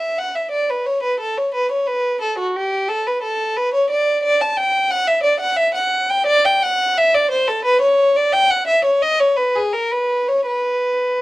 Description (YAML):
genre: classical, baroque-style suite movement for unaccompanied violin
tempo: 88 BPM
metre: 3/4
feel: rubato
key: B minor from 4.2 s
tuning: A4 = 439 Hz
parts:
  - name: rich violin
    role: solo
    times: 0.0-11.2 s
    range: F#4 to A5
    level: -16 LUFS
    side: equal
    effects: none
room: light reverb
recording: worn, warbling old tape, cassette tape, warbly pitch drift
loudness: -15 LUFS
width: side -18 dB against mid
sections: 0.0-11.2 A section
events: none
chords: none